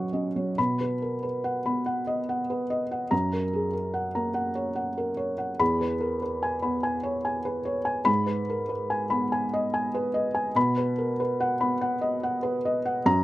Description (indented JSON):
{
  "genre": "neoclassical minimalist piano",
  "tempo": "48 BPM (dotted quarters)",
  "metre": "6/8",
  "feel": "rubato",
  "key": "unclear",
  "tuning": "A4 = 441 Hz",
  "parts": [
    { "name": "felt-muted upright piano", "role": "solo", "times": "0.0-13.2 s", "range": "E2 to C#6", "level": "-25 LUFS", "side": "equal", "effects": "none" }
  ],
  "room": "little or no reverb",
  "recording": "recorded outdoors, with no room sound",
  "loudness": "-25 LUFS",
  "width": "side -16 dB against mid",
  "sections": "0.6-13.2 A section",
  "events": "none",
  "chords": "0.0 Badd9; 0.6 B; 3.1 F#; 5.6 C#m7/E; 8.1 G#m; 10.6 B",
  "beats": "| 0.58 1.87 | 3.12 4.37 | 5.61 6.85 | 8.08 9.31 | 10.56 11.82 | 13.06"
}